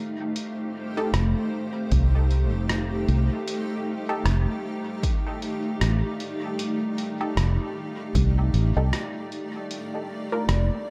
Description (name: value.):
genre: ambient dub.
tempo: 77 BPM.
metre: 4/4.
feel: swing 58% on 16ths.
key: F mixolydian.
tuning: A4 = 439 Hz.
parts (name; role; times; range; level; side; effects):
granular cloud pad; sustained chords; 0.0-10.9 s; A3 to F5; -32 LUFS; equal; built-in reverb.
lo-fi sampler-style drum kit; drums; 0.4-10.7 s; hi-hat, rim click; -35 LUFS; equal; dub echo.
filtered dub chord stab; stabs; 1.0-10.5 s; D4 to Bb4; -36 LUFS; equal; phaser, dub echo.
fingered electric bass; bass; 1.1-10.7 s; F1 to C2; -24 LUFS; equal; none.
electronic kick drum; drums; 1.9-8.3 s; none; -28 LUFS; equal; overdrive.
bubbling stepped-filter texture; texture; 9.9-10.9 s; D5; -39 LUFS; equal; chorus, built-in reverb.
room: light reverb, digital ambience.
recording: none.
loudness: -26 LUFS.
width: mono.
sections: 0.0-10.9 A section.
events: none.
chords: 0.0 F9; 9.7 Bb.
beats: | 0.36 1.14 1.92 2.70 | 3.48 4.25 5.03 5.81 | 6.59 7.37 8.15 8.93 | 9.71 10.49.